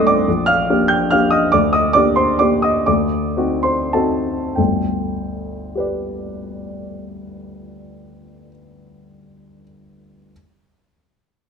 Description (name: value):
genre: classical, piano waltz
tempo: 91-148 BPM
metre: 3/4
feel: rubato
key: unclear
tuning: A4 = 440 Hz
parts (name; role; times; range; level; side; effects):
- warm baby grand piano; solo; 0.0-10.3 s; G1 to G6; -16 LUFS; equal; none
room: light reverb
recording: close, detailed microphones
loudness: -15 LUFS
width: side -6 dB against mid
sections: 0.0-4.6 A section; 4.6-8.2 B section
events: slowing down 0.9-4.6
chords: 0.3 Gm/Bb; 1.5 Gm/D; 2.9 D7b9; 4.6 G